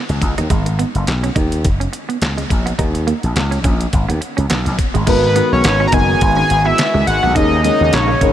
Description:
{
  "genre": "early-eighties boogie funk",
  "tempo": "105 BPM",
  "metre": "4/4",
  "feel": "swing 56% on 16ths",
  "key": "G# minor",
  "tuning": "A4 = 438 Hz",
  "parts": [
    { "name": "semi-hollow electric guitar", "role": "riff", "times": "0.0-8.3 s", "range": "G#3 to D#4", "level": "-24 LUFS", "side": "right 6 dB", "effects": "analog chorus" },
    { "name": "slap bass with an envelope filter", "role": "bass", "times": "0.1-8.3 s", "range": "F#1 to D#2", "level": "-17 LUFS", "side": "equal", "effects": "none" },
    { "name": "detuned 8-bit digital drum machine", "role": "drums", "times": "0.1-8.3 s", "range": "crash cymbal, handclaps, hi-hat, kick drum, snare drum", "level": "-19 LUFS", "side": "equal", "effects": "none" },
    { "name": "fat analog lead", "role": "melody", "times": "5.1-8.3 s", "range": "B4 to A#5", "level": "-15 LUFS", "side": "equal", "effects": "chorus, analog delay" },
    { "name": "dark grand piano", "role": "accompaniment", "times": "5.1-8.3 s", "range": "B3 to A#4", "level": "-20 LUFS", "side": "left 5 dB", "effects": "wide subtle chorus" },
    { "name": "brassy analog pad", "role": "sustained chords", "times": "5.1-8.3 s", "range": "C#3 to F#4", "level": "-23 LUFS", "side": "equal", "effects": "chorus" }
  ],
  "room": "light reverb, digital ambience",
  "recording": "none",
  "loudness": "-13 LUFS",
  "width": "side -11 dB against mid",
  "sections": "0.0-5.1 A section; 5.1-8.3 B section",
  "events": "none",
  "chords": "0.0 N.C.; 0.5 G#m7; 2.8 D#5; 3.9 G#m; 5.1 G#m7; 7.4 D#7sus4"
}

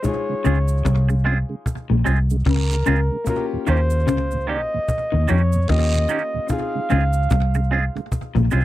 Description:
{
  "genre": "lovers rock reggae",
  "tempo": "74 BPM",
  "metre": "4/4",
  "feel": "swing 60% on 16ths",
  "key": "unclear",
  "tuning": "A4 = 438 Hz",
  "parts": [
    { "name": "warm flugelhorn", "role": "melody", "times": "0.0-7.7 s", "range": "Bb4 to F5", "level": "-26 LUFS", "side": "right 1 dB", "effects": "tape echo" },
    { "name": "clear grand piano", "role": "accompaniment", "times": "0.0-8.6 s", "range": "Ab3 to Ab4", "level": "-31 LUFS", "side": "left 6 dB", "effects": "slapback echo" },
    { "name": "cajon", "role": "drums", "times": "0.0-8.6 s", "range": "none", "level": "-25 LUFS", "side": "equal", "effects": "slapback echo" },
    { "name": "cabasa and guiro", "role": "percussion", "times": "0.0-8.6 s", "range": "none", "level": "-35 LUFS", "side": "right 6 dB", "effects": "slapback echo" },
    { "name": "mellow tonewheel organ", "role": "accompaniment", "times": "0.3-8.6 s", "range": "Eb2 to G4", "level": "-28 LUFS", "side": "right 4 dB", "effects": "chorus vibrato, slow rotary speaker" },
    { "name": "electric guitar through a small old amp", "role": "riff", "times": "0.4-8.6 s", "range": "Bb2 to F3", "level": "-26 LUFS", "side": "left 9 dB", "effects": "slapback echo" },
    { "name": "twangy electric guitar", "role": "stabs", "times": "0.4-8.6 s", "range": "Eb3 to Ab4", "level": "-23 LUFS", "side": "right 6 dB", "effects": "none" },
    { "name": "vintage muted fingered electric bass", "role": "bass", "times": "0.5-8.6 s", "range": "Bb1 to F2", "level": "-18 LUFS", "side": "equal", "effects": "none" }
  ],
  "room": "little or no reverb",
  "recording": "dry, close 1970s-style studio recording",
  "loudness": "-18 LUFS",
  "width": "side -15 dB against mid",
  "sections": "0.0-8.6 A section",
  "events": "none",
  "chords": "0.0 Dbmaj7; 3.3 Eb7; 6.5 Dbmaj7"
}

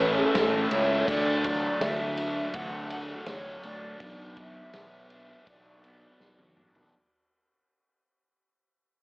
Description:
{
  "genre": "psychedelic rock",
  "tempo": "82 BPM",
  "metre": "4/4",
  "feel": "straight",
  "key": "unclear",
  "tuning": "A4 = 440 Hz",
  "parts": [
    { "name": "mellow hollow silver concert flute", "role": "melody", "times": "0.0-6.5 s", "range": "A4 to F#5", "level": "-31 LUFS", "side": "equal", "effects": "analog delay" },
    { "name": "combo organ", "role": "sustained chords", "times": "0.0-6.9 s", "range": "A3 to E5", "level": "-39 LUFS", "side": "equal", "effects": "none" },
    { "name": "fuzz guitar", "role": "riff", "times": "0.0-6.9 s", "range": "B2 to E4", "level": "-32 LUFS", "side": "equal", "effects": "distortion, phaser" },
    { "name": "fuzz picked electric bass", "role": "bass", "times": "0.0-6.9 s", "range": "E1 to D2", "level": "-33 LUFS", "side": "equal", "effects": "overdrive" },
    { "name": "vintage drum kit", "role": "drums", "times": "0.3-6.9 s", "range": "kick drum, ride cymbal, snare drum, toms", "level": "-32 LUFS", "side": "equal", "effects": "none" }
  ],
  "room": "moderate plate reverb, RT60 2.5 s",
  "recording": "dreamy mix soaked in reverb, AM radio sound",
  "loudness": "-25 LUFS",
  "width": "side -36 dB against mid",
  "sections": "0.0-6.9 A section",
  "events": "fade-out 0.0-6.9; drum fill 6.2-6.9",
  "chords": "0.0 A; 1.1 D; 4.0 Bm"
}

